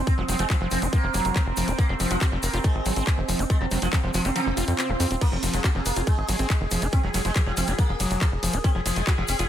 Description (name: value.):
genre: psychedelic trance.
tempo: 140 BPM.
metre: 4/4.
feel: straight.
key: F phrygian.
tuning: A4 = 440 Hz.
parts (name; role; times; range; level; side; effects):
bubbling stepped-filter texture; sustained chords; 0.0-9.5 s; C4 to Ab4; -32 LUFS; right 3 dB; chorus, built-in reverb, sidechain pumping.
tight sequencer bass; bass; 0.0-9.5 s; Eb1 to F2; -27 LUFS; equal; none.
sitar; melody; 0.1-9.5 s; C3 to C4; -30 LUFS; right 2 dB; phaser, sidechain pumping, tape echo.
electronic kick drum; drums; 0.1-9.2 s; none; -22 LUFS; equal; none.
garage drum kit; drums; 0.1-9.5 s; crash cymbal, handclaps, hi-hat, ride cymbal; -31 LUFS; equal; none.
tube shaker; percussion; 0.1-9.5 s; none; -35 LUFS; left 4 dB; none.
overdriven acid bass; riff; 0.2-9.4 s; Eb3 to Gb4; -31 LUFS; moving between left 4 dB and right 3 dB; distortion, auto-pan, cassette tape, sidechain pumping, tape echo.
swell; sound effects; 4.5-5.2 s; none; -37 LUFS; right 1 dB; none.
room: digital ambience.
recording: none.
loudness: -21 LUFS.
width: side -10 dB against mid.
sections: 0.0-9.5 A section.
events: kick drops out 4.4-5.2; swell 4.5-5.2.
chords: 0.0 F5.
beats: | 0.07 0.50 0.93 1.36 | 1.78 2.21 2.64 3.07 | 3.50 3.93 4.36 4.79 | 5.21 5.64 6.07 6.50 | 6.93 7.36 7.79 8.21 | 8.64 9.07.